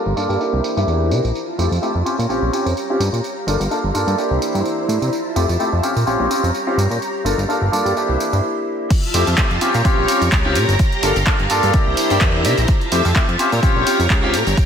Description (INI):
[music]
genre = filtered disco house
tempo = 127 BPM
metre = 4/4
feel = swing 56% on 16ths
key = F major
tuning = A4 = 439 Hz
[part]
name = string machine, full ensemble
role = sustained chords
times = 0.0-14.7 s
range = E4 to Bb5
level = -24 LUFS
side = equal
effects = ensemble chorus, sidechain pumping, low-pass filter
[part]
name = fat analog bass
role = bass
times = 0.1-14.5 s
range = G1 to C3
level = -19 LUFS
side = equal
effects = sidechain pumping, low-pass filter
[part]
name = clear concert grand piano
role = accompaniment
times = 0.2-14.3 s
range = A3 to A4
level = -20 LUFS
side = equal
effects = phaser, sidechain pumping, low-pass filter
[part]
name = punchy analog drum machine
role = drums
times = 0.2-14.7 s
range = crash cymbal, handclaps, hi-hat, tambourine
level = -25 LUFS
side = right 1 dB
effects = sidechain pumping on perc, low-pass filter on perc, sidechain pumping on hats, low-pass filter on hats, sidechain pumping on cymbals, low-pass filter on cymbals, low-pass filter on snare, low-pass filter on room
[part]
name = electronic kick drum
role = drums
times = 8.9-14.7 s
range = none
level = -16 LUFS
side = equal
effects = overdrive
[sound]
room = moderate lush hall reverb, RT60 1.9 s, digital ambience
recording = dreamy mix soaked in reverb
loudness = -15 LUFS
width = side -8 dB against mid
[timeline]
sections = 0.0-8.9 A section; 8.9-14.7 B section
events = filter sweep 0.0-8.9; break 8.4-8.9; drop 8.9-14.7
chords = 0.4 C7; 1.3 Fmaj7; 2.1 Bbm6; 3.2 Gm7; 4.2 C7; 5.1 Fmaj7; 5.8 Bbm6; 7.0 Gm7; 8.0 C7; 8.9 Fmaj7; 9.6 Bbm6; 10.8 Gm7; 11.7 C7; 12.7 Fmaj7; 13.4 Bbm6